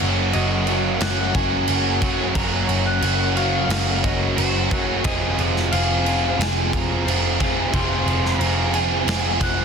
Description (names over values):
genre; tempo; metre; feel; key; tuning
rock, shoegaze and dream pop; 89 BPM; 4/4; straight; unclear; A4 = 439 Hz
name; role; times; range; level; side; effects
electric guitar through a small old amp; melody; 0.0-9.6 s; C5 to C6; -28 LUFS; equal; analog delay
cranked stack guitar; riff; 0.0-9.6 s; F2 to Gb3; -29 LUFS; equal; overdrive, phaser
overdriven electric guitar; riff; 0.0-9.6 s; Gb2 to Ab4; -26 LUFS; left 12 dB; wide subtle chorus
overdriven electric guitar; riff; 0.0-9.6 s; Gb2 to Ab4; -24 LUFS; right 12 dB; reverse reverb
vintage muted picked electric bass; bass; 0.0-9.6 s; F1 to Gb1; -25 LUFS; equal; none
big rock drum kit; drums; 0.0-9.6 s; crash cymbal, kick drum, snare drum; -24 LUFS; right 1 dB; none
room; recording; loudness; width
small room ambience; dense, heavily limited modern master; -18 LUFS; side -6 dB against mid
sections
0.0-9.6 A section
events
none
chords
0.0 Gb6; 5.1 Fm